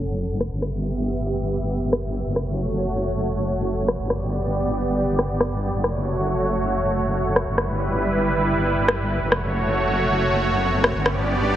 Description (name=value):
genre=heavy wobble dubstep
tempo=138 BPM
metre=4/4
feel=swing 53% on 16ths, half-time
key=F# phrygian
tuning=A4 = 440 Hz
part: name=supersaw pad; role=sustained chords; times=0.0-11.6 s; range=G3 to F#5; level=-23 LUFS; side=right 1 dB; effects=vintage 12-bit sampler grit, low-pass filter
part: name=wobble bass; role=bass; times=0.0-11.6 s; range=F#1 to G1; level=-25 LUFS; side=equal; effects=chorus, overdrive
part: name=sub drop and riser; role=sound effects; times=0.0-0.5, 9.9-11.6 s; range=none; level=-32 LUFS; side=equal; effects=none
part: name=electronic rim click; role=drums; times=0.4-11.1 s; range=none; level=-23 LUFS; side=left 1 dB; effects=none
room=moderate lush hall reverb, RT60 2.6 s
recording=heavily compressed radio sound, multiband compression, low-pass filter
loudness=-20 LUFS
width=side -11 dB against mid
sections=0.0-11.6 A section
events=impact 0.0-0.5; filter sweep on supersaw synth 0.0-11.6; filter sweep 0.0-11.6; riser 9.9-11.6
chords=0.0 F#m; 0.5 Em/G; 2.2 F#m; 4.0 G; 5.7 F#m; 7.5 Em/G; 9.2 F#m; 10.9 G